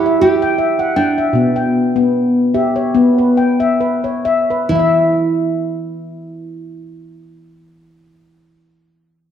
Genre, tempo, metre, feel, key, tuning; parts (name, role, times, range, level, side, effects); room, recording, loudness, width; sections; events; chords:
world meditative, meditative tuned percussion; 64-82 BPM; 4/4; swing 55% on 16ths; E minor; A4 = 439 Hz
nylon-string guitar; melody; 0.0-8.1 s; D4 to G4; -19 LUFS; right 2 dB
handpan; arpeggios; 0.0-8.2 s; B2 to G5; -14 LUFS; left 1 dB
wet echo chamber reverb, RT60 1.8 s, small room ambience; dark, warm production; -12 LUFS; side -9 dB against mid
0.0-4.7 A section; 4.7-8.5 B section
slowing down 0.0-4.7
0.0 Em; 1.3 Bm; 4.7 E5